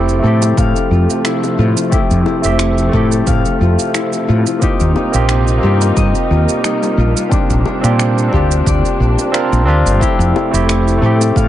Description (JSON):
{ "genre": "sunset chillout", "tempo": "89 BPM", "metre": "4/4", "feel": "swing 54% on 16ths", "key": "F major", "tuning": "A4 = 440 Hz", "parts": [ { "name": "barky tine electric piano", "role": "accompaniment", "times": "0.0-11.5 s", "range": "A3 to E5", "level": "-17 LUFS", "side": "moving between left 4 dB and right 4 dB", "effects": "auto-pan, low-pass filter, analog delay" }, { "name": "muted studio string section", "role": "sustained chords", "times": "0.0-11.5 s", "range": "C3 to Eb4", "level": "-22 LUFS", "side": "right 1 dB", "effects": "none" }, { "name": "concert harp", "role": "arpeggios", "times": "0.0-11.5 s", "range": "D4 to F5", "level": "-20 LUFS", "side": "left 6 dB", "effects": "analog delay" }, { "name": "woody fretless electric bass", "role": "bass", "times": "0.0-11.5 s", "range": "F1 to Bb2", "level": "-13 LUFS", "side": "equal", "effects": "none" }, { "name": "electronic shaker and finger snaps", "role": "drums", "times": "0.1-11.5 s", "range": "none", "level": "-24 LUFS", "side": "right 3 dB", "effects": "overdrive, dub echo" }, { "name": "bongos", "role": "percussion", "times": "0.4-11.5 s", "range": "none", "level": "-28 LUFS", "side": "left 7 dB", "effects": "none" }, { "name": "electronic kick drum", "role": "drums", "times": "0.6-11.5 s", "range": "none", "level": "-18 LUFS", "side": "equal", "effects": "overdrive" } ], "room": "moderate spring reverb, RT60 2.7 s", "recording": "echo-heavy mix, nothing above 11.0 kHz", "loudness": "-11 LUFS", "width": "side -12 dB against mid", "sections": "0.0-11.5 A section", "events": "filter sweep on tine electric piano 0.0-11.5", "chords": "0.0 Fmaj7; 4.6 Eb69; 7.0 Bb69; 10.0 Fmaj7" }